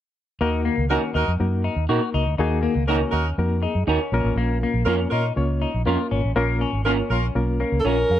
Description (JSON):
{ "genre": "soul", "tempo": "121 BPM", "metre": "4/4", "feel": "straight", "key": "Eb minor", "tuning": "A4 = 444 Hz", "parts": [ { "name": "barky reed electric piano", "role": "accompaniment", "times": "0.4-8.2 s", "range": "Bb2 to F5", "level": "-26 LUFS", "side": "left 2 dB", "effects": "overdrive, fast tremolo" }, { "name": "semi-hollow electric guitar", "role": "riff", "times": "0.4-8.2 s", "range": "Bb3 to Gb4", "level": "-28 LUFS", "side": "left 6 dB", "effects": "wide subtle chorus" }, { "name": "vintage muted fingered electric bass", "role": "bass", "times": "0.4-8.2 s", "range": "Ab1 to Bb2", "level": "-23 LUFS", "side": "equal", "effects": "none" }, { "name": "bright saxophone section", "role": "second line", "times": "0.9-7.3 s", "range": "Db4 to Bb4", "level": "-27 LUFS", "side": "right 2 dB", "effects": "none" }, { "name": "electric guitar through a small old amp", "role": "stabs", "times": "0.9-8.0 s", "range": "Db4 to Bb4", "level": "-26 LUFS", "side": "right 8 dB", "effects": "none" }, { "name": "breathy tenor saxophone", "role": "melody", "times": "7.8-8.2 s", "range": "A4 to Bb4", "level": "-20 LUFS", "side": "equal", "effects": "none" } ], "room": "light reverb, small room ambience", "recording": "dark, warm production", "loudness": "-20 LUFS", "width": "side -11 dB against mid", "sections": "0.4-8.2 A section", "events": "none", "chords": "0.4 Ebm; 4.1 Bbm" }